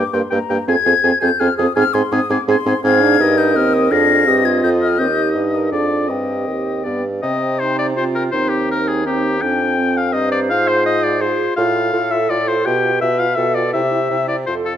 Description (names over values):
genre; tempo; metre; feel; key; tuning
quick classical-period movement for wind quintet; 166 BPM; 3/4; straight; C minor, C major from 11.6 s; A4 = 442 Hz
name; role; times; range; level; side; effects
mellow hollow silver concert flute; melody; 0.0-14.7 s; G5 to Bb6; -21 LUFS; left 7 dB; none
clear oboe; second line; 0.0-14.7 s; G4 to Ab5; -20 LUFS; left 4 dB; none
clear French horn; accompaniment; 0.0-14.7 s; Bb3 to F4; -22 LUFS; equal; none
mellow clarinet; accompaniment; 0.0-14.8 s; C4 to C5; -22 LUFS; right 6 dB; none
warm bassoon; bass; 0.0-14.8 s; Eb2 to C3; -20 LUFS; right 2 dB; none
room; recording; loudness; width
moderate recital hall reverb, RT60 1.5 s; none; -14 LUFS; side -10 dB against mid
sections
0.0-7.2 A section; 7.2-14.8 B section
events
none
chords
0.0 Gmadd11; 0.7 Fm; 1.8 Ab; 3.9 Fm; 5.0 Cm/Eb (rootless); 5.7 Ddim/F; 6.1 Cm/G; 6.8 G; 7.2 Cm; 8.3 Cm/Eb; 9.4 Fm; 10.5 Fm/Ab; 11.6 F/A; 12.7 G7/B; 13.7 C